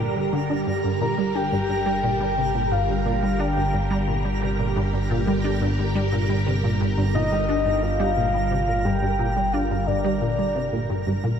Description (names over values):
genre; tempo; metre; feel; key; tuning
ambient, sequencer-driven space music; 88 BPM; 4/4; straight; G minor; A4 = 440 Hz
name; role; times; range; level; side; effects
soft octave-layered synth lead; melody; 0.0-11.2 s; D5 to Bb5; -26 LUFS; left 1 dB; chorus, phaser, ping-pong delay
phased string machine; sustained chords; 0.0-11.4 s; D3 to Bb4; -28 LUFS; right 1 dB; ensemble chorus, phaser
resonant blip pluck; riff; 0.0-11.3 s; G2 to D4; -25 LUFS; equal; ensemble chorus, ping-pong delay
fat analog bass; bass; 0.0-11.4 s; G1; -27 LUFS; equal; none
twinkling granular texture; texture; 0.0-11.4 s; Bb5; -36 LUFS; right 2 dB; built-in reverb
room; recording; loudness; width
moderate lush hall reverb, RT60 2.9 s; dark, warm production; -20 LUFS; side -8 dB against mid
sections
0.0-11.4 A section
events
none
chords
0.0 Gm